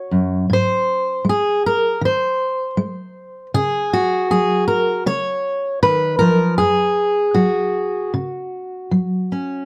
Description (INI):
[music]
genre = folk, solo fingerstyle acoustic guitar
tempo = 79 BPM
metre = 4/4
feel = straight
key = F# major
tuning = A4 = 438 Hz
[part]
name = fingerpicked steel-string acoustic guitar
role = solo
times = 0.0-9.7 s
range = F#2 to C#5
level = -19 LUFS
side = equal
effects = none
[sound]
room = light reverb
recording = none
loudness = -19 LUFS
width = mono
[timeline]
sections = 0.0-9.7 A section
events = none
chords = 0.5 G#; 3.5 C#sus4; 5.1 C#; 6.6 F#5